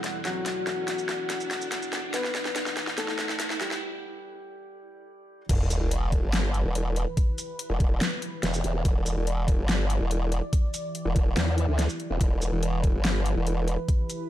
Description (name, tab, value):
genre	heavy wobble dubstep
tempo	143 BPM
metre	4/4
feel	half-time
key	E minor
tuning	A4 = 440 Hz
part	felt-muted upright piano	melody	0.0-5.4 s	F#3 to B4	-34 LUFS	left 3 dB	ping-pong delay
part	lush unison pad	sustained chords	0.0-14.3 s	E2 to F#5	-37 LUFS	equal	chorus, sidechain pumping
part	dubstep drum kit	drums	0.0-14.2 s	crash cymbal, hi-hat, shaker, snare drum	-31 LUFS	equal	overdrive, high-pass filter on snare, studio reverb, high-pass filter on hats, high-pass filter on perc, high-pass filter on cymbals
part	riser and sub drop	sound effects	0.0-7.2 s	none	-35 LUFS	equal	none
part	granular cloud pad	texture	0.0-3.8 s	E4 to D5	-42 LUFS	equal	built-in reverb, sidechain pumping
part	formant-sweep wobble bass	bass	5.5-13.8 s	E1 to G1	-26 LUFS	equal	chorus, overdrive
part	electronic kick drum	drums	5.5-14.0 s	none	-23 LUFS	equal	overdrive, studio reverb
part	formant-sweep wobble bass	bass	8.4-8.8, 11.4-12.2 s	E1 to E2	-24 LUFS	equal	chorus, overdrive
room	light reverb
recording	dark, warm production, high-pass filter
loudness	-24 LUFS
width	side -13 dB against mid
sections	0.0-5.5 A section; 5.5-14.3 B section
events	build-up 0.0-5.5; drum fill 0.0-3.8; riser 0.0-3.8; break 3.8-5.5; drop 5.5-14.3; impact 5.5-7.2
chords	0.0 Em